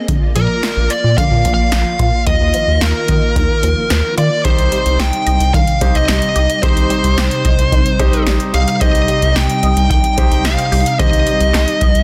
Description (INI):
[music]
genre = synth-pop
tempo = 110 BPM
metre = 4/4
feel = straight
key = unclear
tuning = A4 = 440 Hz
[part]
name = string machine, violas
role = sustained chords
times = 0.0-12.0 s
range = C3 to D5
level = -24 LUFS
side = equal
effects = ensemble chorus
[part]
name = resonant blip pluck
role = arpeggios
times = 0.0-12.0 s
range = D3 to Eb5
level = -27 LUFS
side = equal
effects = phaser, digital delay
[part]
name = rubbery square bass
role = bass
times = 0.1-12.0 s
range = Bb1 to Eb3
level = -18 LUFS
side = equal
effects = none
[part]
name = electro analog drum machine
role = drums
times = 0.1-12.0 s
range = handclaps, hi-hat, kick drum, snare drum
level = -19 LUFS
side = equal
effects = none
[part]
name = fuzz lead guitar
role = melody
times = 0.4-12.0 s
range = Bb4 to G5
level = -20 LUFS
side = equal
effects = distortion
[part]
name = clear baby grand piano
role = accompaniment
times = 4.5-11.9 s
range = Eb4 to C5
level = -25 LUFS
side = equal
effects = none
[sound]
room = light reverb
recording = dense, heavily limited modern master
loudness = -14 LUFS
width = mono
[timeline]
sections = 0.0-4.4 A section; 4.4-12.0 B section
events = none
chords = 0.1 Bb; 2.3 Ebsus2; 4.4 Cm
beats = | 0.09 0.63 1.18 1.72 | 2.27 2.81 3.36 3.90 | 4.45 4.99 5.54 6.08 | 6.63 7.18 7.72 8.27 | 8.81 9.36 9.90 10.45 | 10.99 11.54